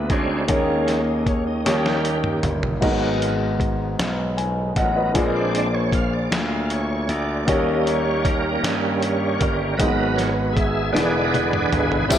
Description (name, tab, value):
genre	slow gospel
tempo	52 BPM (dotted quarters)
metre	6/8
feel	straight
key	G# minor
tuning	A4 = 442 Hz
part	warm upright piano	accompaniment	0.0-12.2 s	G#2 to G#5	-23 LUFS	left 1 dB	none
part	bright tonewheel organ	sustained chords	0.0-12.2 s	D3 to E#5	-24 LUFS	right 2 dB	fast rotary speaker, overdrive, chorus vibrato
part	gritty slap bass	bass	0.0-12.2 s	E1 to G2	-25 LUFS	equal	overdrive
part	lo-fi sampler-style drum kit	drums	0.1-12.2 s	crash cymbal, hi-hat, kick drum, snare drum, toms	-25 LUFS	equal	none
part	tambourine	percussion	12.1-12.2 s	none	-25 LUFS	left 4 dB	none
room	moderate lush hall reverb, RT60 2.5 s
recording	big arena sound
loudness	-19 LUFS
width	side -10 dB against mid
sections	0.0-12.1 A section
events	tonewheel organ solo 0.0-12.1; drum fill 1.7-2.8, 11.0-12.1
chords	0.5 D#7sus4; 1.7 D#7; 2.8 G#m7; 5.2 A#7; 7.5 D#7; 9.8 G#m7; 11.0 E7